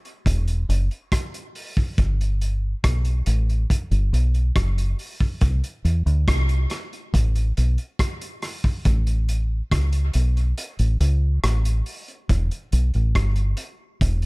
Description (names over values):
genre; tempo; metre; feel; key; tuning
dub reggae; 70 BPM; 4/4; straight; unclear; A4 = 440 Hz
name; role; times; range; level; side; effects
crunchy breakbeat drum kit; drums; 0.1-14.3 s; hi-hat, kick drum, rim click; -24 LUFS; equal; none
deep dub fingered electric bass; bass; 0.3-14.3 s; E1 to E2; -19 LUFS; equal; none
room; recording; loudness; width
little or no reverb; none; -20 LUFS; side -27 dB against mid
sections
0.0-14.3 A section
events
kick muted 10.6-12.3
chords
none